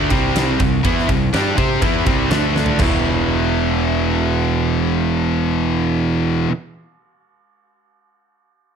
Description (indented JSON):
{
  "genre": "hard rock",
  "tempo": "123 BPM",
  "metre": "4/4",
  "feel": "straight",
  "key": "E minor",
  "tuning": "A4 = 440 Hz",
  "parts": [
    { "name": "high-gain distorted guitar", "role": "riff", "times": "0.0-6.5 s", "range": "E2 to C5", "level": "-20 LUFS", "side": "left 10 dB", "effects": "distortion" },
    { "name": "overdriven electric guitar", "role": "riff", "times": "0.0-6.5 s", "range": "E2 to C5", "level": "-21 LUFS", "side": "right 12 dB", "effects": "none" },
    { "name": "fuzz fingered electric bass", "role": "bass", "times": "0.0-6.5 s", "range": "E1 to C3", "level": "-22 LUFS", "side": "equal", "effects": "overdrive" },
    { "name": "huge arena drum kit", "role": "drums", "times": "0.1-2.9 s", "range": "kick drum, ride cymbal, snare drum, splash cymbal, toms", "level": "-20 LUFS", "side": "right 1 dB", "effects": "none" }
  ],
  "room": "light reverb, small room ambience",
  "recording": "none",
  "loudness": "-15 LUFS",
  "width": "side -7 dB against mid",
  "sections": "0.0-2.8 A section; 2.8-6.7 B section",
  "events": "drum fill 2.6",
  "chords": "0.0 C5; 2.3 D5; 2.8 E5"
}